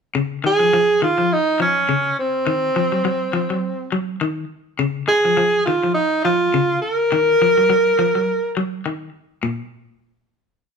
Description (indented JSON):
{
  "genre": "afrobeat",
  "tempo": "103 BPM",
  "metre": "4/4",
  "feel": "swing 55% on 16ths",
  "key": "unclear",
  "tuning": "A4 = 441 Hz",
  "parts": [
    { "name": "electric guitar at the edge of break-up", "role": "arpeggios", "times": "0.1-9.6 s", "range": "Bb2 to Gb3", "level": "-23 LUFS", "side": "left 4 dB", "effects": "tremolo" },
    { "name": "clear tenor saxophone", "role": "melody", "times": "0.5-8.5 s", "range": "C4 to Bb4", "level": "-16 LUFS", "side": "right 1 dB", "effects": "none" }
  ],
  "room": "moderate large studio reverb, RT60 1.0 s",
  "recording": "band playing live in one room",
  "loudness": "-16 LUFS",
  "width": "side -5 dB against mid",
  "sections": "0.2-9.4 groove; 9.4-10.8 final note",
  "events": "none",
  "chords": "0.2 Dbadd9; 2.5 Cdim; 4.8 Db; 7.1 Ebmadd9; 9.4 N.C.",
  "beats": "| 0.15 0.73 1.31 1.89 | 2.47 3.05 3.63 4.21 | 4.79 5.37 5.95 6.54 | 7.12 7.70 8.28 8.86 | 9.44"
}